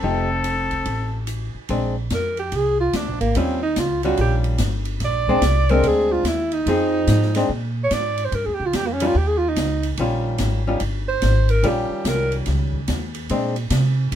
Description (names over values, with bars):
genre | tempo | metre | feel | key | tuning
jazz, small-group swing and bop | 145 BPM | 4/4 | swing 65% on 8ths | unclear | A4 = 442 Hz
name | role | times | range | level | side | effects
trumpet with straight mute | melody | 0.0-1.3 s | A4 | -25 LUFS | left 4 dB | none
clear alto saxophone | second line | 0.0-12.3 s | Bb3 to D5 | -22 LUFS | right 2 dB | none
archtop guitar, miked and amplified | accompaniment | 0.0-13.5 s | Eb3 to Ab4 | -23 LUFS | left 2 dB | none
upright bass | bass | 0.0-14.2 s | F1 to C3 | -22 LUFS | equal | none
open jazz drum kit | drums | 0.4-14.2 s | hi-hat, kick drum, ride cymbal, snare drum | -29 LUFS | equal | none
room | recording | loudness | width
light reverb | minimal, uncompressed stereo recording | -18 LUFS | side -10 dB against mid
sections
0.0-1.7 A section; 1.7-14.2 B section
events
alto saxophone solo 1.7-14.2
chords
0.0 F9; 1.7 Bb9; 3.3 Eb9; 5.0 Bb9; 6.7 Fm7; 7.5 Absus2; 8.3 Eb9; 13.3 Bb9